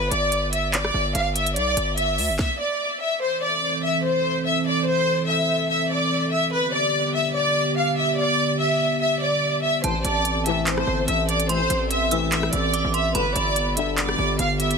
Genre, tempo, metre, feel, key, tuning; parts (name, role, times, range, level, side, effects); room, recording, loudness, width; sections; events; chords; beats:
hip hop, trap; 145 BPM; 4/4; half-time; A minor; A4 = 438 Hz
warm studio violin section; melody; 0.0-14.8 s; B4 to F5; -22 LUFS; left 1 dB; tape echo
distorted 808-style bass; bass; 0.0-2.4, 9.8-14.8 s; G1 to D2; -27 LUFS; equal; distortion
trap drum kit; drums; 0.1-2.5, 9.8-14.8 s; handclaps, hi-hat, kick drum, rim click, snare drum; -26 LUFS; right 1 dB
dark analog pad; sustained chords; 3.2-14.8 s; D3 to A4; -27 LUFS; right 2 dB; chorus
metallic FM bell; second line; 9.8-14.3 s; A5 to E6; -30 LUFS; right 4 dB; chorus, tremolo, tape echo
mellow brass ensemble; stabs; 9.8-14.2 s; G2 to E3; -30 LUFS; left 9 dB; tape echo
digital ambience; dense, heavily limited modern master; -20 LUFS; side -5 dB against mid
0.0-3.2 A section; 3.2-14.8 B section
stop 2.4-3.2
0.0 G5; 3.2 Am; 6.5 G; 9.8 Am; 13.1 G
0.32 0.73 1.15 | 1.56 1.98 2.39 2.80 | 3.22 3.63 4.04 4.46 | 4.87 5.29 5.70 6.11 | 6.53 6.94 7.36 7.77 | 8.18 8.60 9.01 9.43 | 9.84 10.25 10.67 11.08 | 11.49 11.91 12.32 12.73 | 13.15 13.56 13.98 14.39